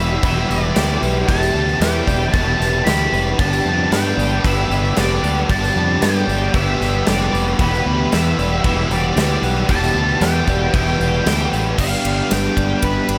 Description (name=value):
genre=rock, shoegaze and dream pop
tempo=114 BPM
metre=4/4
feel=straight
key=G major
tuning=A4 = 438 Hz
part: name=octave-fuzz lead guitar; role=melody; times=0.0-13.2 s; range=B4 to B5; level=-25 LUFS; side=equal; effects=distortion, digital delay
part: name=ensemble organ-string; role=sustained chords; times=0.0-13.2 s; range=G4 to B5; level=-33 LUFS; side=equal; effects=none
part: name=semi-hollow electric guitar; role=arpeggios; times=0.0-13.2 s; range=G4 to D5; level=-31 LUFS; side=equal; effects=lush chorus, digital delay
part: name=biting overdriven guitar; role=riff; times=0.0-13.2 s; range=E2 to G4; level=-24 LUFS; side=equal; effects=analog chorus
part: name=overdriven semi-hollow guitar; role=riff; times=0.0-13.2 s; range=E2 to G4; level=-27 LUFS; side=equal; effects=reverse reverb
part: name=fuzz fingered electric bass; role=bass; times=0.0-13.2 s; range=E1 to G2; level=-23 LUFS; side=equal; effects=overdrive
part: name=big rock drum kit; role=drums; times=0.2-13.2 s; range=crash cymbal, kick drum, ride cymbal, snare drum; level=-24 LUFS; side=equal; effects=none
part: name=tambourine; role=percussion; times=0.2-12.4 s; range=none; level=-39 LUFS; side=equal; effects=none
room=light reverb, small room ambience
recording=none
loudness=-17 LUFS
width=mono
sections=0.0-11.8 A section; 11.8-13.2 B section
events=none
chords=0.0 Em; 3.4 Gadd9; 7.6 Em; 11.8 Gadd9